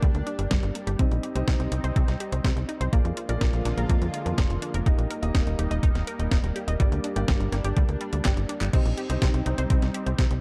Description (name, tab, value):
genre	italo disco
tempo	124 BPM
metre	4/4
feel	straight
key	C minor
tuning	A4 = 440 Hz
part	lush unison pad	sustained chords	0.0-10.4 s	D3 to F4	-37 LUFS	equal	chorus, phaser
part	unison pluck	arpeggios	0.0-10.3 s	G3 to Eb5	-38 LUFS	equal	cassette tape, tape echo
part	dark grand piano	stabs	0.0-10.4 s	Bb3 to Eb5	-38 LUFS	equal	tape echo
part	tight sequencer bass	bass	0.0-10.4 s	Eb1 to F2	-30 LUFS	equal	none
part	clean 12-bit digital drum machine	drums	0.0-10.4 s	crash cymbal, handclaps, hi-hat, snare drum	-36 LUFS	equal	none
part	electronic kick drum	drums	0.0-10.3 s	none	-25 LUFS	equal	none
room	light reverb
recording	dark, warm production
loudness	-25 LUFS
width	mono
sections	0.0-10.4 A section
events	drum fill 8.3-8.7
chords	0.0 Gm; 1.0 Cm; 2.9 Bb7; 4.9 Eb; 6.8 Gm; 8.7 Cm